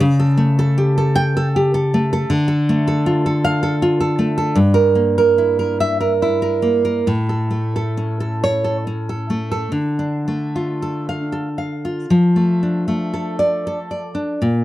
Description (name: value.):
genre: romantic piece for solo classical guitar.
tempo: 66-81 BPM.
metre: 3/4.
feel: rubato.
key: D minor.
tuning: A4 = 443 Hz.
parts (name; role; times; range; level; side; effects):
nylon-string guitar; solo; 0.0-14.6 s; G2 to G5; -16 LUFS; equal; none.
room: little or no reverb.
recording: dry, close 1970s-style studio recording.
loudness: -16 LUFS.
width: side -15 dB against mid.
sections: 0.0-9.7 A section; 9.7-14.6 B section.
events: none.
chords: 0.0 A7/C#; 2.3 Dm; 4.6 Edim/G; 7.1 A; 9.7 Dm; 12.1 Dm/F.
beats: | 0.04 0.79 1.55 | 2.30 3.06 3.83 | 4.59 5.37 6.19 | 7.05 7.96 8.84 | 9.70 10.52 11.31 | 12.08 12.86 13.63 | 14.39.